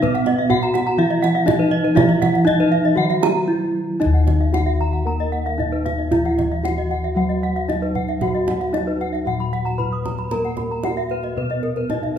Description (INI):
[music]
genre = Balinese gamelan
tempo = 114-128 BPM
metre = 4/4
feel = straight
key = Eb pelog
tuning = A4 = 439 Hz
[part]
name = gamelan-type bronze metallophone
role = melody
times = 0.0-12.2 s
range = Cb4 to Cb5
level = -23 LUFS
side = equal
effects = none
[part]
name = gamelan-type bronze metallophone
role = accompaniment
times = 0.0-12.2 s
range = Eb3 to Cb4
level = -26 LUFS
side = right 1 dB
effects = none
[part]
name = gamelan-type bronze metallophone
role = arpeggios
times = 0.0-12.2 s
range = Cb5 to Cb6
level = -25 LUFS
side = left 3 dB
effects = none
[part]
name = gamelan-type bossed gongs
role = bass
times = 0.0-12.2 s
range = Eb2 to Cb5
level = -23 LUFS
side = left 1 dB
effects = none
[part]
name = kendang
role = percussion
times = 0.0-12.2 s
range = none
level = -26 LUFS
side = right 4 dB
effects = none
[part]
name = gamelan-type bronze metallophone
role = arpeggios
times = 0.1-12.2 s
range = Bb4 to Eb6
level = -26 LUFS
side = right 4 dB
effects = none
[sound]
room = wet recital hall reverb, RT60 1.6 s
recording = minimal, uncompressed stereo recording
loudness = -17 LUFS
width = side -8 dB against mid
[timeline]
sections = 0.0-4.0 A section; 4.0-12.2 B section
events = break 3.2-4.0; drum fill 12.0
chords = none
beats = | 0.03 0.50 0.98 1.47 | 1.96 2.46 2.97 3.48 | 4.01 4.53 5.06 5.58 | 6.11 6.64 7.16 7.69 | 8.22 8.74 9.27 9.80 | 10.32 10.85 11.38 11.90